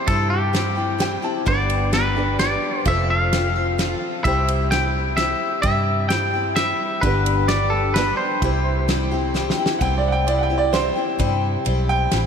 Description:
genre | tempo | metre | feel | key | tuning
honky-tonk and classic country | 130 BPM | 3/4 | straight | C major | A4 = 440 Hz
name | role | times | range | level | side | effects
twangy electric guitar | melody | 0.0-9.5 s | G4 to G5 | -22 LUFS | left 1 dB | diffuse ambient delay
honky-tonk upright piano | accompaniment | 0.0-9.8 s | D4 to A5 | -30 LUFS | right 5 dB | none
picked steel-string acoustic guitar | accompaniment | 0.0-12.3 s | G2 to A4 | -25 LUFS | left 5 dB | wide subtle chorus
vintage muted fingered electric bass | bass | 0.1-12.3 s | F1 to G2 | -23 LUFS | right 1 dB | none
natural country drum kit | drums | 0.1-12.2 s | kick drum, ride cymbal, snare drum | -26 LUFS | right 1 dB | none
bright upright piano | second line | 9.8-12.3 s | C5 to G5 | -22 LUFS | right 4 dB | none
room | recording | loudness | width
moderate huge ambient reverb, RT60 4.0 s | dreamy mix soaked in reverb | -18 LUFS | side -7 dB against mid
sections
0.0-9.8 A section; 9.8-12.3 B section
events
honky-tonk piano fill 0.8-1.5; drum fill 9.3-9.8; upright piano solo 9.8-12.3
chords
0.0 C; 1.5 G; 2.9 F; 4.2 C; 7.0 G; 8.4 C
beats
| 0.09 0.55 1.01 | 1.47 1.94 2.40 | 2.86 3.33 3.79 | 4.25 4.71 5.18 | 5.64 6.10 6.57 | 7.03 7.49 7.96 | 8.42 8.88 9.35 | 9.81 10.27 10.74 | 11.20 11.66 12.13

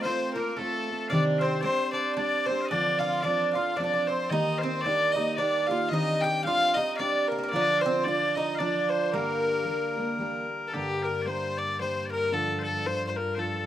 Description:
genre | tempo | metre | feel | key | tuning
celtic folk | 112 BPM | 3/4 | swing 57% on 8ths | G minor | A4 = 440 Hz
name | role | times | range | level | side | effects
rich fiddle | melody | 0.0-13.7 s | G4 to G5 | -28 LUFS | left 3 dB | none
loud bright bagpipes | second line | 0.0-13.7 s | G4 to G5 | -35 LUFS | left 3 dB | none
picked steel-string acoustic guitar | accompaniment | 0.0-13.7 s | G2 to Bb4 | -32 LUFS | right 1 dB | none
Irish bouzouki | second line | 0.1-10.5 s | A3 to G4 | -29 LUFS | right 4 dB | none
dark cello | drone | 10.7-13.7 s | G2 | -37 LUFS | left 1 dB | stereo widening
room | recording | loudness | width
light reverb | rough home demo mix | -24 LUFS | side -12 dB against mid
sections
0.0-10.7 A section; 10.7-13.7 B section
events
none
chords
0.0 F/A; 1.1 Cmadd9; 2.7 Dm7; 4.3 Eb; 5.9 Cmadd9/Eb; 7.5 Dm; 9.1 Gm; 12.3 Dm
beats
0.05 0.58 | 1.11 1.65 2.18 | 2.71 3.25 3.78 | 4.32 4.85 5.38 | 5.92 6.45 6.99 | 7.52 8.05 8.59 | 9.12 9.66 10.19 | 10.72 11.26 11.79 | 12.32 12.85 13.39

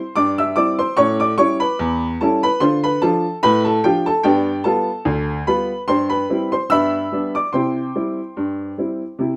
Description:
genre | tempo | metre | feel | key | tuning
ragtime piano | 73 BPM | 2/4 | swing 54% on 16ths | C major | A4 = 439 Hz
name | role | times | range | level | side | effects
warm upright piano | solo | 0.0-9.4 s | D2 to E6 | -19 LUFS | equal | none
room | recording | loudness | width
moderate studio reverb, RT60 0.5 s | none | -19 LUFS | mono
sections
0.0-9.4 A section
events
none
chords
0.0 C; 1.0 A7; 2.6 Dm; 4.2 G7; 5.9 C/G; 6.7 G; 7.5 C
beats
0.15 | 0.97 1.79 | 2.61 3.43 | 4.24 5.06 | 5.88 6.71 | 7.53 8.36 | 9.19

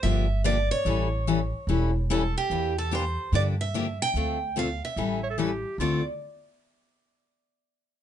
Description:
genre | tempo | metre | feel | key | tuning
acoustic string swing (jazz manouche) | 146 BPM | 4/4 | swing 63% on 8ths | D minor | A4 = 439 Hz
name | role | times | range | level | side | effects
picked steel-string acoustic guitar | melody | 0.0-6.0 s | G4 to G5 | -30 LUFS | right 3 dB | none
picked steel-string acoustic guitar | accompaniment | 0.0-6.0 s | D3 to A4 | -28 LUFS | left 5 dB | none
upright bass | bass | 0.0-6.0 s | E1 to G2 | -28 LUFS | right 1 dB | none
clear clarinet | second line | 5.2-6.0 s | F4 to C#5 | -32 LUFS | right 3 dB | none
room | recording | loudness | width
moderate club reverb, RT60 0.5 s | nothing above 10.9 kHz | -24 LUFS | side -10 dB against mid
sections
0.0-2.5 A section; 2.5-5.8 B section; 5.8-7.4 C section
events
none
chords
0.0 Gm7; 0.9 A7; 2.5 Em7b5; 3.3 Gm7; 4.1 Dm7; 5.0 A7; 5.8 Dm7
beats
0.03 0.44 | 0.85 1.26 1.68 2.09 | 2.50 2.91 3.32 3.73 | 4.14 4.55 4.96 5.38 | 5.79

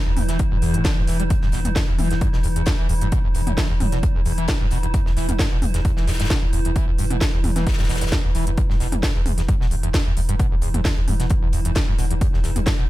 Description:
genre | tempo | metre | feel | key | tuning
driving peak-time techno | 132 BPM | 4/4 | straight | E minor | A4 = 440 Hz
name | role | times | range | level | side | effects
metallic inharmonic drone | drone | 0.0-12.9 s | E3 | -29 LUFS | equal | chorus, built-in reverb, phaser, sidechain pumping
screaming distorted acid line | riff | 0.1-12.8 s | E2 to G3 | -26 LUFS | equal | distortion, wide subtle chorus, sidechain pumping, ping-pong delay
warm sub bass | bass | 0.1-12.9 s | E1 | -24 LUFS | equal | overdrive, sidechain pumping, low-pass filter
gated 80s drum kit | drums | 0.2-12.8 s | hi-hat, snare drum | -34 LUFS | left 2 dB | sidechain pumping on hats, high-pass filter on hats, high-pass filter on snare, high-pass filter on room
techno drum kit | drums | 0.2-12.8 s | hi-hat, snare drum, toms | -27 LUFS | equal | overdrive, sidechain pumping on hats, sidechain pumping on cymbals, sidechain pumping on toms
electronic kick drum | drums | 0.4-12.8 s | none | -21 LUFS | equal | overdrive
room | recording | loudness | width
little or no reverb | none | -18 LUFS | side -16 dB against mid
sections
0.0-12.9 A section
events
none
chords
none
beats
0.40 0.85 | 1.30 1.76 2.21 2.67 | 3.12 3.58 4.03 4.49 | 4.94 5.39 5.85 6.30 | 6.76 7.21 7.67 8.12 | 8.58 9.03 9.49 9.94 | 10.39 10.85 11.30 11.76 | 12.21 12.67

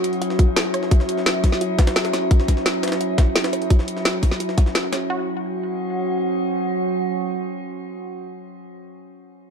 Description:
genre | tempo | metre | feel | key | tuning
dark technical drum and bass | 172 BPM | 4/4 | straight | unclear | A4 = 438 Hz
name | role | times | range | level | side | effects
metallic inharmonic drone | sustained chords | 0.0-8.7 s | F#3 to F#4 | -26 LUFS | right 1 dB | chorus, built-in reverb, vintage 12-bit sampler grit, sidechain pumping
drum and bass drum kit | drums | 0.0-5.0 s | hi-hat, snare drum | -23 LUFS | equal | none
jungle sampler-style drum kit | drums | 0.0-5.0 s | hi-hat, snare drum | -30 LUFS | left 1 dB | high-pass filter on hats, high-pass filter on snare, high-pass filter on room
warbly tape-like pad | texture | 0.0-8.7 s | F#4 to F#5 | -26 LUFS | equal | chorus, built-in reverb, sidechain pumping
wide unison pluck | arpeggios | 0.2-5.3 s | F#4 to C#5 | -30 LUFS | right 1 dB | cassette tape, sidechain pumping, ping-pong delay
electronic kick drum | drums | 0.4-4.6 s | none | -16 LUFS | equal | none
room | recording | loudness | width
moderate digital room reverb, RT60 1.1 s, digital ambience | dark, warm production | -18 LUFS | side -6 dB against mid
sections
0.0-5.1 A section; 5.1-7.9 B section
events
none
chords
0.0 F#5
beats
0.22 0.56 | 0.91 1.26 1.61 1.96 | 2.31 2.66 3.01 3.35 | 3.70 4.05 4.40 4.75 | 5.10 5.45 5.80 6.15 | 6.50 6.84 7.19 7.54

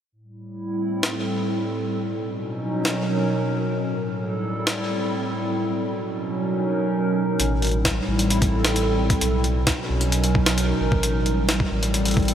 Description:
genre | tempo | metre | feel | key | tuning
IDM | 132 BPM | 4/4 | straight | unclear | A4 = 438 Hz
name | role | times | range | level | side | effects
warbly tape-like pad | sustained chords | 0.4-12.3 s | A2 to A#4 | -23 LUFS | equal | chorus, built-in reverb
jungle sampler-style drum kit | drums | 1.0-12.3 s | hi-hat, snare drum | -26 LUFS | equal | diffuse ambient delay
warm sub bass | bass | 7.4-12.3 s | A1 to B1 | -24 LUFS | equal | none
electronic kick drum | drums | 7.9-12.3 s | none | -22 LUFS | equal | none
room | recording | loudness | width
wet huge ambient reverb, RT60 7.8 s | dreamy mix soaked in reverb | -20 LUFS | side -9 dB against mid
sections
0.1-7.4 A section; 7.4-12.3 B section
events
none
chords
0.1 Am7; 1.9 Bmaj7; 3.8 Am7; 5.6 Bmaj7; 7.4 Am7; 9.2 Bmaj7; 11.0 Am7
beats
| 0.12 0.58 1.03 1.49 | 1.94 2.40 2.85 3.31 | 3.76 4.21 4.67 5.12 | 5.58 6.03 6.49 6.94 | 7.40 7.85 8.30 8.76 | 9.21 9.67 10.12 10.58 | 11.03 11.49 11.94

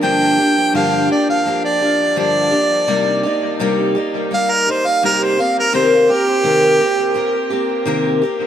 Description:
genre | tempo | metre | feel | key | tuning
rock | 84 BPM | 4/4 | straight | unclear | A4 = 441 Hz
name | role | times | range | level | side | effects
warm harmonica | melody | 0.0-7.5 s | G4 to G5 | -16 LUFS | right 2 dB | dub echo
picked steel-string acoustic guitar | accompaniment | 0.0-8.5 s | G2 to Bb4 | -16 LUFS | left 1 dB | dub echo
room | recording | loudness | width
light reverb | echo-heavy mix | -13 LUFS | side -10 dB against mid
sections
0.0-8.5 A section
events
harmonica solo 0.0-8.5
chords
0.0 Gm7; 2.9 Cm7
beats
| 0.03 0.74 1.46 2.17 | 2.89 3.60 4.31 5.02 | 5.74 6.45 7.16 7.87

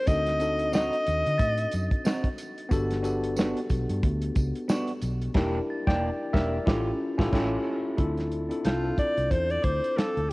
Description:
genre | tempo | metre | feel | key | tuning
lush 1970s-style soul | 91 BPM | 4/4 | swing 58% on 16ths | unclear | A4 = 440 Hz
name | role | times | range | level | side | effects
warm alto saxophone | melody | 0.0-2.0, 8.7-10.3 s | F4 to Eb5 | -27 LUFS | left 1 dB | cassette tape
tine electric piano | accompaniment | 0.0-10.3 s | B3 to G5 | -30 LUFS | left 1 dB | medium stereo tremolo, cassette tape
vintage muted fingered electric bass | bass | 0.1-10.3 s | E1 to D3 | -30 LUFS | equal | tube saturation
warm soul drum kit | drums | 0.1-10.3 s | crash cymbal, hi-hat, kick drum, snare drum | -27 LUFS | equal | cassette tape
tambourine | percussion | 0.1-5.2 s | none | -47 LUFS | right 3 dB | none
semi-hollow electric guitar | riff | 0.7-10.2 s | Bb3 to A4 | -35 LUFS | right 2 dB | phaser, cassette tape
glockenspiel with soft plastic mallets | texture | 1.4-10.3 s | D6 to A6 | -41 LUFS | right 1 dB | cassette tape
room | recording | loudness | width
light reverb, small room ambience | home recording on cassette | -24 LUFS | side -22 dB against mid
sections
0.0-8.0 A section; 8.0-10.3 B section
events
band accent 5.4-8.0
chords
0.1 D7b9; 2.7 Gmaj7; 5.4 Em7b5; 6.7 A7b13; 8.0 Dm7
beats
| 0.08 0.74 1.40 2.06 | 2.72 3.37 4.03 4.69 | 5.35 6.01 6.67 7.33 | 7.99 8.65 9.31 9.97

